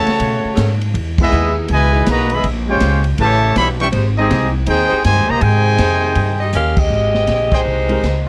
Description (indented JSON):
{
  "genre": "jazz, big band swing",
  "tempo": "161 BPM",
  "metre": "4/4",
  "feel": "swing 64% on 8ths",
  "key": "Ab major",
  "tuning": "A4 = 440 Hz",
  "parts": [
    { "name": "clear trumpet section", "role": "melody", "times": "0.0-6.5 s", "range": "B3 to C#6", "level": "-19 LUFS", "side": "equal", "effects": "none" },
    { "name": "bright trombone section", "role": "second line", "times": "0.0-6.5 s", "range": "B2 to Ab4", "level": "-23 LUFS", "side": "equal", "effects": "none" },
    { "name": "upright bass", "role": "bass", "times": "0.0-8.3 s", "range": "Ab1 to B2", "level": "-20 LUFS", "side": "equal", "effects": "none" },
    { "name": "swinging big-band drum kit", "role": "drums", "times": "0.1-8.1 s", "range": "crash cymbal, hi-hat, kick drum, ride cymbal, snare drum", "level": "-25 LUFS", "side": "equal", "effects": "none" },
    { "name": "mellow saxophone section", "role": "sustained chords", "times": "0.5-6.9 s", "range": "D#3 to Eb5", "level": "-28 LUFS", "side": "equal", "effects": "none" },
    { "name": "warm saxophone section", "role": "melody", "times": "6.6-8.3 s", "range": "Ab3 to F5", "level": "-19 LUFS", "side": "equal", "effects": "none" },
    { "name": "clear trumpet section", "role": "stabs", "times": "7.5-7.6 s", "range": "Ab4 to G5", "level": "-26 LUFS", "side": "equal", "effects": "none" },
    { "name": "warm baby grand piano", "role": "accompaniment", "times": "7.9-8.0 s", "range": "Ab3 to Bb4", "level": "-24 LUFS", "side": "equal", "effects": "none" }
  ],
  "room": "light reverb",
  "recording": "cassette tape",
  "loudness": "-15 LUFS",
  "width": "mono",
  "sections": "0.0-6.9 A section; 6.9-8.3 B section",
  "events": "band accent 1.1, 6.7, 7.5; drum fill 6.5-6.9",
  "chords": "0.2 B13; 0.9 Emaj7; 2.4 Bbm9; 3.2 A9; 3.9 Abmaj7",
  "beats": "0.19 0.57 | 0.94 1.31 1.69 2.06 | 2.43 2.81 3.18 3.55 | 3.92 4.30 4.67 5.04 | 5.42 5.79 6.16 6.53 | 6.91 7.28 7.65 8.03"
}